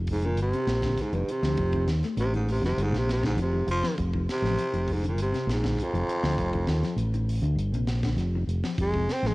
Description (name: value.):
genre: afrobeat.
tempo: 100 BPM.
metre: 4/4.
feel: straight.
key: unclear.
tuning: A4 = 441 Hz.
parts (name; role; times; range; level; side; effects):
electric guitar through a small old amp; arpeggios; 0.0-9.3 s; C3 to A3; -36 LUFS; left 4 dB; cassette tape.
fingered electric bass; bass; 0.0-9.3 s; F1 to Eb2; -26 LUFS; equal; transformer saturation.
raspy baritone saxophone; melody; 0.1-9.3 s; F2 to C4; -28 LUFS; right 1 dB; cassette tape.
tight funk drum kit; drums; 0.1-9.3 s; hi-hat, kick drum, snare drum; -35 LUFS; equal; none.
room: small room reverb.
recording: home recording on cassette.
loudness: -24 LUFS.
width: side -21 dB against mid.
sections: 0.0-9.3 A section.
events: baritone saxophone solo 0.0-9.3.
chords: 0.4 Gm7; 1.6 F7; 2.8 Gm7 (rootless); 4.0 F7(no3); 5.2 Gm7; 6.4 F7; 7.6 Gm7 (rootless); 8.8 F.